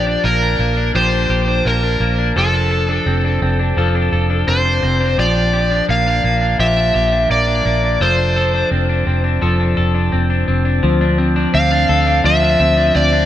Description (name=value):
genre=dream pop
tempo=85 BPM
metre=4/4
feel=straight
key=F major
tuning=A4 = 439 Hz
part: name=overdriven slide guitar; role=melody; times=0.0-13.3 s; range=A4 to F5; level=-17 LUFS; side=equal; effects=tape echo
part: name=clean electric guitar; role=arpeggios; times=0.0-13.3 s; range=F3 to A4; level=-18 LUFS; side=left 2 dB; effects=wide subtle chorus, tape echo
part: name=vintage muted fingered electric bass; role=bass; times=0.0-13.3 s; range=F1 to D2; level=-17 LUFS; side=right 1 dB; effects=none
room=light reverb, digital ambience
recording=none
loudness=-13 LUFS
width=side -12 dB against mid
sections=0.0-10.8 A section; 10.8-13.3 B section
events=none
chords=0.0 Bb6; 2.4 F6; 5.2 Bb6; 8.0 F6; 10.8 Dm7